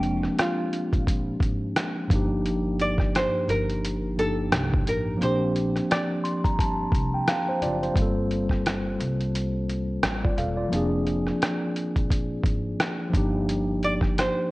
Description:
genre	lo-fi hip hop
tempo	87 BPM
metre	4/4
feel	swing 59% on 16ths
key	unclear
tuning	A4 = 439 Hz
part	archtop guitar, miked and amplified	melody	0.0-6.6, 13.8-14.5 s	F4 to D5	-28 LUFS	right 1 dB	none
part	mellow tine electric piano	accompaniment	0.0-14.5 s	G2 to C6	-26 LUFS	equal	fast stereo tremolo, cassette tape
part	upright bass	bass	0.0-14.3 s	E1 to C2	-30 LUFS	equal	none
part	lo-fi sampler-style drum kit	drums	0.0-14.4 s	hi-hat, kick drum, rim click	-26 LUFS	equal	none
room	moderate plate reverb, RT60 1.6 s, digital ambience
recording	worn, warbling old tape, cassette tape, warbly pitch drift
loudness	-23 LUFS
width	side -20 dB against mid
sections	0.0-14.5 A section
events	none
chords	0.0 Bb9/F; 2.1 Ebmaj9/G; 5.2 Bb69; 8.0 Gm11; 10.7 Bb9/F; 13.1 Ebmaj9/G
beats	0.37 1.06 1.75 | 2.44 3.13 3.82 4.51 | 5.20 5.89 6.58 7.27 | 7.96 8.65 9.34 10.03 | 10.72 11.41 12.10 12.79 | 13.48 14.17

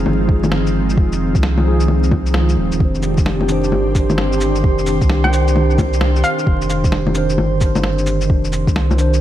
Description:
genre	future garage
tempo	131 BPM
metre	4/4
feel	swing 64% on 16ths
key	unclear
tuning	A4 = 441 Hz
part	mellow tine electric piano	accompaniment	0.0-9.2 s	Eb3 to C5	-21 LUFS	right 2 dB	medium stereo tremolo, sidechain pumping, tape echo
part	airy breathy pad	sustained chords	0.0-9.2 s	Eb3 to G4	-21 LUFS	equal	chorus, sidechain pumping
part	soft dub sub bass	bass	0.0-9.2 s	Eb1 to C2	-18 LUFS	equal	tube saturation, sidechain pumping
part	electronic bongos, shaker, snare drum and cabasa	drums	0.1-9.2 s	none	-22 LUFS	left 2 dB	none
part	electronic kick drum	drums	0.3-8.7 s	none	-16 LUFS	equal	none
part	drifting glass-harmonics texture	texture	3.4-9.2 s	C5	-30 LUFS	right 7 dB	chorus, built-in reverb
part	hollow square pluck	melody	5.2-6.6 s	F5 to G5	-23 LUFS	left 1 dB	chorus, analog delay
room	light reverb, digital ambience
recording	vinyl crackle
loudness	-14 LUFS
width	side -12 dB against mid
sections	0.0-9.2 A section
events	none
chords	0.0 Fm7; 2.8 Cmadd9/F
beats	0.06 0.52 | 0.98 1.43 1.89 2.35 | 2.81 3.27 3.73 4.18 | 4.64 5.10 5.56 6.01 | 6.47 6.93 7.39 7.85 | 8.30 8.76

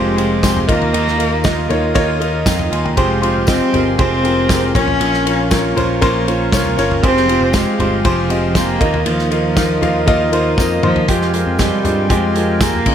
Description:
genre	piano-driven pop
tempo	118 BPM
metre	4/4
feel	straight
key	F minor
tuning	A4 = 439 Hz
part	rich cello	melody	0.0-12.9 s	F3 to Db4	-19 LUFS	equal	none
part	clear concert grand piano	accompaniment	0.0-12.9 s	Bb2 to C6	-18 LUFS	left 2 dB	none
part	pipe organ, foundations	sustained chords	0.0-12.9 s	Ab4 to Eb6	-26 LUFS	right 3 dB	none
part	direct-recorded clean electric guitar	riff	0.0-12.9 s	F2 to G4	-24 LUFS	right 8 dB	harmonic tremolo
part	picked electric bass	bass	0.0-12.9 s	F1 to G2	-21 LUFS	equal	none
part	loose indie drum kit	drums	0.2-12.9 s	crash cymbal, hi-hat, kick drum, ride cymbal, snare drum, toms	-19 LUFS	equal	none
part	tambourine	percussion	0.4-12.7 s	none	-30 LUFS	left 5 dB	none
room	light reverb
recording	none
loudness	-13 LUFS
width	side -9 dB against mid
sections	0.0-11.1 A section; 11.1-12.9 B section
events	drum fill 10.6-11.1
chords	0.0 Fmadd9; 0.7 Ebsus2; 3.0 Fmadd9; 4.7 Bbm; 7.0 Fmadd9; 8.8 Ebsus2; 11.1 Fmadd9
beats	0.44 | 0.94 1.45 1.96 2.46 | 2.97 3.48 3.99 4.49 | 5.00 5.51 6.01 6.52 | 7.03 7.54 8.04 8.55 | 9.06 9.56 10.07 10.58 | 11.09 11.59 12.10 12.61

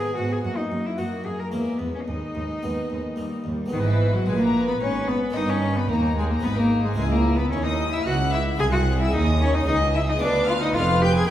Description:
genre	classical, baroque-style concerto movement with solo episodes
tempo	111 BPM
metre	3/4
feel	straight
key	G# minor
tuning	A4 = 440 Hz
part	rich cello	melody	0.0-11.3 s	D#3 to A#4	-25 LUFS	left 1 dB	none
part	warm chamber violin section	melody	0.0-11.3 s	A#4 to G#6	-34 LUFS	left 4 dB	none
part	rich chamber violin section	second line	0.0-11.3 s	D#4 to A#5	-31 LUFS	left 2 dB	none
part	dark chamber viola section	accompaniment	0.0-11.3 s	G3 to B4	-30 LUFS	right 1 dB	none
part	harpsichord	accompaniment	0.0-11.3 s	B#1 to A#4	-32 LUFS	equal	none
part	rich chamber cello section	bass	0.2-11.3 s	B#1 to A#2	-27 LUFS	right 2 dB	none
part	warm studio double bass section	bass	3.7-11.3 s	F1 to D#2	-26 LUFS	right 1 dB	none
room	wet recital hall reverb, RT60 1.6 s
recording	heard from further back in the room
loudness	-20 LUFS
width	side -12 dB against mid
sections	0.0-3.7 A section; 3.7-11.3 B section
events	none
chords	0.4 D#m/F#; 1.5 C#m/E; 2.1 G#m/D#; 3.2 D#; 3.7 G#m; 5.4 D#/G; 6.4 G#5; 7.0 C#m; 8.6 G#/B#; 9.7 C#5; 10.2 Ddim7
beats	| 0.45 0.98 1.53 | 2.08 2.63 3.19 | 3.73 4.28 4.82 | 5.36 5.90 6.45 | 6.99 7.53 8.06 | 8.60 9.14 9.68 | 10.22 10.75 11.29

